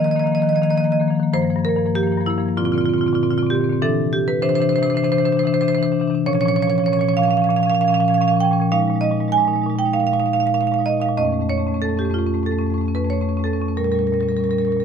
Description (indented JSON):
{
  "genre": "classical, contemporary piece for solo marimba",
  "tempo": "97 BPM",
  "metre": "4/4",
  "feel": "rubato",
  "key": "Bb dorian",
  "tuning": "A4 = 440 Hz",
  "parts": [
    { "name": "marimba with medium hard mallets", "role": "solo", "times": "0.0-14.8 s", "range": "F2 to Ab5", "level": "-17 LUFS", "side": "equal", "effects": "none" }
  ],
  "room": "light reverb",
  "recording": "minimal, uncompressed stereo recording",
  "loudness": "-17 LUFS",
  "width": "side -7 dB against mid",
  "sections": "0.0-14.8 A section",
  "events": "none",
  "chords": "0.0 Ebsus2; 1.3 Gm7; 2.6 Bbadd9; 3.8 Cadd9; 6.3 Bbm; 8.7 Fm7/Bb; 11.2 Faug; 13.8 Bbm6",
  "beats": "0.10 0.72 | 1.33 1.96 2.58 3.19 | 3.82 4.43 5.04 5.65 | 6.26 6.86 7.48 8.10 | 8.71 9.32 9.94 10.55 | 11.18 11.82 12.46 13.10 | 13.77 14.45"
}